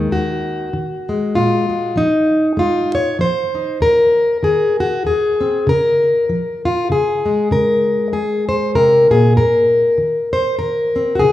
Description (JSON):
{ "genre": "folk, solo fingerstyle acoustic guitar", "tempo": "97 BPM", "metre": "3/4", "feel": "swing 57% on 8ths", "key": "unclear", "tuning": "A4 = 444 Hz", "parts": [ { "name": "fingerpicked plugged-in steel-string acoustic guitar", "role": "solo", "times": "0.0-11.3 s", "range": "Eb2 to Db5", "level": "-14 LUFS", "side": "left 1 dB", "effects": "none" } ], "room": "wet recital hall reverb, RT60 1.6 s", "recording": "recorded in a church or concert hall, small room ambience", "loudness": "-14 LUFS", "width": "side -13 dB against mid", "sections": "0.1-11.3 A section", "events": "none", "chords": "0.1 Ebm; 2.0 Fm7; 3.8 Ab/Eb; 5.7 Db; 9.4 Abadd9" }